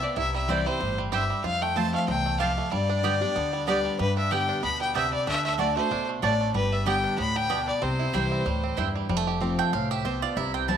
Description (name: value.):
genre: bluegrass.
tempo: 188 BPM.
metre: 4/4.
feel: swing 55% on 8ths.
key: unclear.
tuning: A4 = 438 Hz.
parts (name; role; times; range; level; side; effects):
bright fiddle; melody; 0.0-8.8 s; B4 to B5; -28 LUFS; left 3 dB; none.
picked steel-string acoustic guitar; accompaniment; 0.0-10.8 s; E2 to G4; -29 LUFS; left 2 dB; none.
bluegrass banjo; arpeggios; 0.0-10.8 s; G3 to G4; -32 LUFS; right 9 dB; none.
upright bass; bass; 0.0-10.8 s; F1 to G2; -32 LUFS; left 1 dB; none.
mandolin; stabs; 0.5-10.8 s; A3 to A5; -32 LUFS; right 9 dB; none.
room: moderate echo chamber reverb, RT60 2.5 s.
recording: 1960s-style stereo.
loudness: -23 LUFS.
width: side -8 dB against mid.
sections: 0.0-9.1 A section; 9.1-10.8 B section.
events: mandolin solo 9.1-10.8.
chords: 0.2 C; 1.4 F; 2.7 G; 5.3 D; 6.5 G; 7.8 C; 9.1 F.